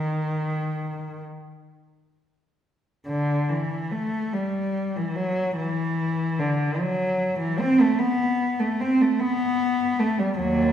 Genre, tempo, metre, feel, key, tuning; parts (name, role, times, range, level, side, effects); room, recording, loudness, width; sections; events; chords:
classical, free, expressive piece for unaccompanied cello; 49 BPM (dotted quarters); 6/8; uneven beats, rubato; E minor; A4 = 439 Hz
warm cello; solo; 0.0-10.7 s; D#2 to C4; -22 LUFS; equal
wet recital hall reverb, RT60 1.5 s; recorded in a church or concert hall; -22 LUFS; side -9 dB against mid
0.0-3.1 A section; 3.1-10.7 B section